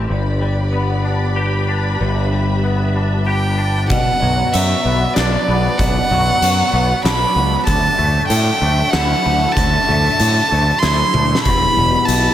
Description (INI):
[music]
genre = post-rock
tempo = 95 BPM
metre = 3/4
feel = straight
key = unclear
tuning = A4 = 440 Hz
[part]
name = warm studio string section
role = sustained chords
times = 0.0-12.3 s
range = D3 to B5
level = -26 LUFS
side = left 1 dB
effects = none
[part]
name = twangy electric guitar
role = arpeggios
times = 0.0-12.3 s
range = E2 to G4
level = -22 LUFS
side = left 3 dB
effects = ensemble chorus, tape echo
[part]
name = growling fingered electric bass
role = bass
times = 0.0-12.3 s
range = E1 to A2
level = -18 LUFS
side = equal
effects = overdrive
[part]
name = clear violin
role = melody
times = 3.3-12.3 s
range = D5 to C6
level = -17 LUFS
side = right 1 dB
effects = tape echo
[part]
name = oversized low-tuned drum kit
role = drums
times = 3.9-12.2 s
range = hi-hat, kick drum, snare drum, toms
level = -20 LUFS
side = equal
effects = none
[sound]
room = moderate scoring stage reverb, RT60 1.8 s, small room ambience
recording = none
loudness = -13 LUFS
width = side -11 dB against mid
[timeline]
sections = 0.0-3.9 A section; 3.9-12.3 B section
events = drum fill 11.1-11.4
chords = 0.1 G; 3.9 Bm; 7.7 Dadd9; 11.4 Em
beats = | 0.10 0.73 1.36 | 2.00 2.63 3.26 | 3.90 4.53 5.16 | 5.79 6.42 7.05 | 7.68 8.31 8.94 | 9.57 10.19 10.82 | 11.45 12.08